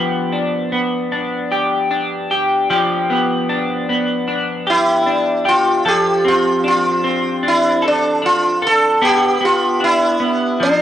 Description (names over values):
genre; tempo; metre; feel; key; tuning
dream pop; 76 BPM; 4/4; straight; unclear; A4 = 441 Hz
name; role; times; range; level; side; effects
clean electric guitar; arpeggios; 0.0-10.8 s; F3 to A4; -17 LUFS; left 1 dB; analog chorus, tape echo
sitar; melody; 4.7-10.8 s; D4 to A4; -14 LUFS; right 1 dB; tape echo
room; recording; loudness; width
light reverb, studio ambience; dry, gritty hardware recording, nothing above 10.5 kHz; -14 LUFS; side -11 dB against mid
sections
0.0-10.8 A section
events
none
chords
0.0 G7; 5.9 Dm7/F; 9.0 Em7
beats
0.33 1.12 1.91 | 2.70 3.49 4.28 5.07 | 5.86 6.65 7.44 8.23 | 9.02 9.81 10.60